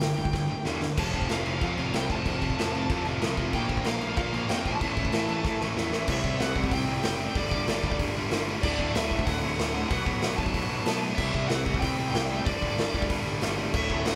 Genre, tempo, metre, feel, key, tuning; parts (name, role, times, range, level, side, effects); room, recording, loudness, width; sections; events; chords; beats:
punk rock; 188 BPM; 4/4; straight; A4 = 442 Hz
high-gain lead guitar; melody; 0.0-14.2 s; D5 to A5; -36 LUFS; equal; distortion
biting overdriven guitar; riff; 0.0-14.2 s; D2 to C4; -35 LUFS; equal
distorted electric guitar; riff; 0.0-14.2 s; D2 to C4; -36 LUFS; equal; overdrive
fuzz picked electric bass; bass; 0.0-14.2 s; D1 to Bb2; -35 LUFS; equal; overdrive
raw garage drum kit; drums; 0.0-14.1 s; crash cymbal, hi-hat, kick drum, snare drum; -32 LUFS; equal
moderate large studio reverb, RT60 1.5 s; band playing live in one room; -28 LUFS; mono
1.0-6.1 A section; 6.1-14.2 B section
drum fill 0.3-1.0, 5.4-6.1
0.0 G5; 1.0 F; 3.5 Bb5; 4.8 A5; 6.1 C; 7.4 G5; 8.6 D; 9.9 B5; 11.2 C; 12.5 G5
0.01 0.33 0.65 | 0.97 1.29 1.61 1.93 | 2.25 2.57 2.89 3.21 | 3.53 3.85 4.17 4.49 | 4.80 5.12 5.44 5.76 | 6.08 6.40 6.72 7.04 | 7.36 7.68 8.00 8.31 | 8.63 8.95 9.27 9.59 | 9.91 10.23 10.55 10.87 | 11.18 11.50 11.82 12.14 | 12.46 12.78 13.10 13.42 | 13.74 14.05